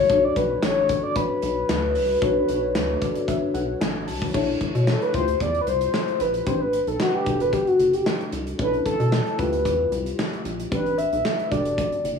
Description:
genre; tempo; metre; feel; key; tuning
early-eighties boogie funk; 113 BPM; 4/4; straight; unclear; A4 = 439 Hz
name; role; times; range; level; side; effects
mellow horn-like synth lead; melody; 0.0-12.0 s; F#4 to E5; -22 LUFS; left 1 dB; chorus, slapback echo
FM electric piano with soft pad layer; accompaniment; 0.0-12.2 s; C4 to A5; -28 LUFS; left 4 dB; chorus
rubbery square bass; bass; 0.0-12.2 s; E1 to B2; -28 LUFS; left 1 dB; none
modern studio drum kit; drums; 0.1-12.2 s; crash cymbal, handclaps, hi-hat, kick drum, snare drum; -27 LUFS; equal; none
room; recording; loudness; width
moderate large studio reverb, RT60 1.4 s, small room ambience; small room reverb; -20 LUFS; side -6 dB against mid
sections
0.0-4.3 A section; 4.3-12.2 B section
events
FM electric piano fill 2.8-4.3; soft synth lead solo 4.3-12.2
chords
0.0 Bm9; 4.3 Bm11; 5.1 Dm11; 6.5 Am11; 7.3 Em11; 8.6 Bm11; 9.4 Dm11; 10.7 Am11; 11.5 Em11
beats
| 0.10 0.63 1.16 1.69 | 2.22 2.75 3.28 3.81 | 4.34 4.88 5.41 5.94 | 6.47 7.00 7.53 8.06 | 8.59 9.12 9.65 10.19 | 10.72 11.25 11.78

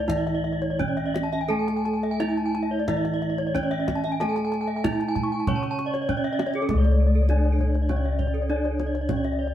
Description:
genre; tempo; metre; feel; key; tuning
Balinese gamelan; 85-100 BPM; 4/4; straight; C# pelog; A4 = 437 Hz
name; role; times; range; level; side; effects
gamelan-type bronze metallophone; melody; 0.0-9.5 s; A3-20c to C#5; -29 LUFS; right 4 dB; none
gamelan-type bronze metallophone; accompaniment; 0.0-9.5 s; C#3 to C#4; -30 LUFS; left 1 dB; none
gamelan-type bronze metallophone; arpeggios; 0.0-9.5 s; A4-20c to C#6; -30 LUFS; left 3 dB; none
gamelan-type bossed gongs; bass; 0.0-9.5 s; C#2 to A4-20c; -26 LUFS; left 1 dB; none
kendang; percussion; 0.1-9.3 s; none; -31 LUFS; right 3 dB; none
gamelan-type bronze metallophone; arpeggios; 0.2-9.5 s; G#4-30c to A5-20c; -33 LUFS; right 2 dB; none
room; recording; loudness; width
moderate stone room reverb, RT60 1.0 s; band playing live in one room; -22 LUFS; side -11 dB against mid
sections
0.0-6.7 A section; 6.7-9.5 B section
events
none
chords
none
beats
0.09 0.80 | 1.50 2.20 2.88 3.55 | 4.21 4.85 5.48 6.09 | 6.70 7.29 7.89 8.49 | 9.09

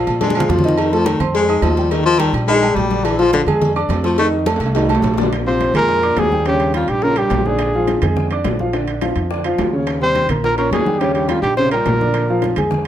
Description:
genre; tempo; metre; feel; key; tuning
Afro-Cuban jazz; 211 BPM; 4/4; straight; Bb mixolydian; A4 = 441 Hz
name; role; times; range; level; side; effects
warm grand piano; accompaniment; 0.0-12.8 s; Db3 to Eb6; -20 LUFS; right 1 dB; none
upright bass; bass; 0.0-12.9 s; Bb1 to Bb2; -22 LUFS; right 1 dB; none
agogo bells and timbales; percussion; 0.1-12.9 s; none; -25 LUFS; right 5 dB; none
congas; percussion; 0.1-12.9 s; none; -25 LUFS; left 1 dB; none
cowbell and bongos; percussion; 0.1-12.9 s; none; -26 LUFS; left 4 dB; none
breathy baritone saxophone; second line; 0.2-12.5 s; F2 to A3; -19 LUFS; left 3 dB; none
mellow trumpet; melody; 5.5-12.5 s; F4 to C5; -18 LUFS; right 1 dB; plate reverb
room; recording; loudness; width
moderate studio reverb, RT60 0.8 s; none; -14 LUFS; side -11 dB against mid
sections
0.0-5.3 A section; 5.3-12.9 B section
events
baritone saxophone solo 0.0-5.3; drum fill 0.2-0.8, 4.5-5.3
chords
0.0 Bb7; 0.8 F7; 1.9 Eb; 3.0 Bb7; 4.2 F7; 5.3 Bb7; 6.5 Eb7; 7.6 Bb7; 9.9 Eb7; 12.1 Bb7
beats
0.22 0.50 | 0.79 1.07 1.35 1.63 | 1.92 2.20 2.48 2.77 | 3.05 3.33 3.62 3.90 | 4.18 4.47 4.75 5.03 | 5.32 5.60 5.89 6.17 | 6.46 6.74 7.03 7.31 | 7.59 7.88 8.16 8.45 | 8.73 9.02 9.30 9.59 | 9.87 10.16 10.44 10.72 | 11.01 11.29 11.58 11.86 | 12.15 12.43 12.71

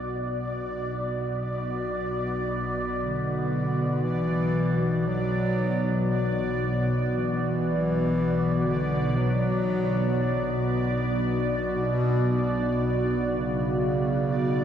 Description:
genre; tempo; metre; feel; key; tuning
ambient; free time; none; none; B minor; A4 = 439 Hz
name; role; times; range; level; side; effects
dark analog pad; sustained chords; 0.0-14.6 s; B3 to D5; -30 LUFS; equal; chorus
organ-like drone; drone; 0.0-14.6 s; B1 to B2; -29 LUFS; equal; ensemble chorus, built-in reverb
bubbling stepped-filter texture; texture; 0.0-14.6 s; D5; -33 LUFS; right 2 dB; chorus, built-in reverb
mellow bass clarinet; melody; 3.0-14.6 s; B2 to F#3; -27 LUFS; equal; tape echo
room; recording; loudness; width
wet cathedral reverb, RT60 6.6 s; none; -24 LUFS; side -9 dB against mid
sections
0.0-14.6 A section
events
fade-in on synth drone 0.0-14.6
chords
0.0 Bm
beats
free time

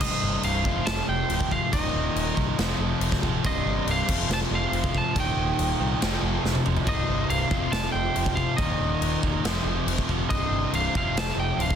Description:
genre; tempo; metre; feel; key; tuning
hard rock; 140 BPM; 4/4; straight; unclear; A4 = 435 Hz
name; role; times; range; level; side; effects
lightly driven lead guitar; melody; 0.0-11.8 s; Eb5 to A5; -30 LUFS; right 1 dB; analog delay
octave-fuzz lead guitar; second line; 0.0-11.8 s; Bb4 to F5; -35 LUFS; right 2 dB; distortion
crunchy overdriven guitar; riff; 0.0-11.8 s; C2 to F3; -32 LUFS; equal; none
sludgy distorted guitar; riff; 0.0-11.8 s; C2 to F3; -32 LUFS; left 9 dB; overdrive
tight distorted guitar; riff; 0.0-11.8 s; C2 to F3; -32 LUFS; right 12 dB; distortion
picked electric bass; bass; 0.0-11.8 s; C1 to C2; -30 LUFS; equal; none
huge arena drum kit; drums; 0.0-11.8 s; crash cymbal, kick drum, snare drum, toms; -28 LUFS; left 1 dB; none
room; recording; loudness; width
light reverb, studio ambience; dense, heavily limited modern master; -22 LUFS; side -8 dB against mid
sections
0.0-11.8 A section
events
drum fill 6.4-6.9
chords
0.0 Cm; 0.7 F5; 1.7 Eb5; 2.6 F5; 3.4 Cm; 4.1 F5; 5.2 Eb; 6.0 F5; 6.9 Cm; 7.5 F5; 8.6 Eb5; 9.4 F5; 10.3 Cm; 10.9 F5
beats
| 0.01 0.44 0.87 1.30 | 1.73 2.15 2.58 3.01 | 3.44 3.87 4.30 4.72 | 5.15 5.58 6.01 6.44 | 6.87 7.30 7.73 8.16 | 8.59 9.02 9.45 9.88 | 10.30 10.73 11.16 11.60

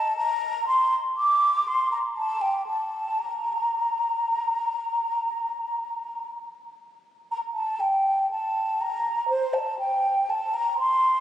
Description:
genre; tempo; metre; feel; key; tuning
classical, baroque-style fantasia for unaccompanied flute; 60 BPM; 4/4; rubato; Bb major; A4 = 440 Hz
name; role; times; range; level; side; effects
mellow hollow concert flute; solo; 0.0-11.2 s; C5 to D6; -23 LUFS; equal; none
room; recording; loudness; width
wet church reverb, RT60 3.3 s; recorded on a phone in the room, studio reverb, compression; -23 LUFS; side -11 dB against mid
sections
0.0-7.3 A section; 7.3-11.2 A section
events
none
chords
none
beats
0.20 1.19 2.19 | 3.20 4.23 5.26 6.28 | 7.31 8.31 9.30 10.31

